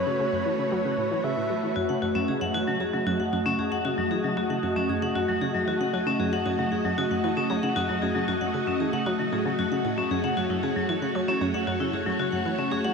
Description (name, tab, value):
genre	ambient, sequencer-driven space music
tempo	115 BPM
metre	4/4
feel	straight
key	F# dorian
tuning	A4 = 439 Hz
part	breathy flute-like synth lead	melody	0.0-1.8 s	C#5 to E5	-31 LUFS	equal	chorus, analog delay
part	string machine, full ensemble	sustained chords	0.0-12.9 s	A3 to D#5	-28 LUFS	right 1 dB	ensemble chorus
part	analog pluck	riff	0.0-12.9 s	F#2 to F#3	-31 LUFS	right 1 dB	chorus, analog delay
part	vibraphone with hard mallets	arpeggios	1.8-12.9 s	F#3 to F#5	-28 LUFS	left 3 dB	auto-pan, analog delay
room	wet huge ambient reverb, RT60 8.8 s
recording	none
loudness	-24 LUFS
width	side -5 dB against mid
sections	0.0-12.9 A section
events	none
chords	0.0 F#m